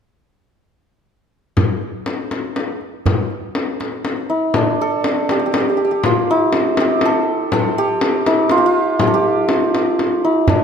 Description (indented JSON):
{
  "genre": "Persian modal ensemble",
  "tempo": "81 BPM (dotted quarters)",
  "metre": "6/8",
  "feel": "straight",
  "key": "unclear",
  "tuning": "A4 = 444 Hz",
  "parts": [
    { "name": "frame drum", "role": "percussion", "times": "1.6-10.6 s", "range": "none", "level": "-20 LUFS", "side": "left 4 dB", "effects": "none" },
    { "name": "tombak", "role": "percussion", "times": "1.6-4.4, 10.5-10.6 s", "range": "none", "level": "-19 LUFS", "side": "right 3 dB", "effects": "none" },
    { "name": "santur", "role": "melody", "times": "4.3-10.6 s", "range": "D4 to A4", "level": "-15 LUFS", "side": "right 1 dB", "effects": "none" }
  ],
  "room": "moderate scoring stage reverb, RT60 1.7 s",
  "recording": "close, detailed microphones",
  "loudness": "-15 LUFS",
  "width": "side -7 dB against mid",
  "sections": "1.6-4.5 A section; 4.5-10.6 B section",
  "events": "none",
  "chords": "none",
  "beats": "| 1.57 2.31 | 3.06 3.80 | 4.54 5.29 | 6.03 6.77 | 7.52 8.26 | 9.00 9.74 | 10.49"
}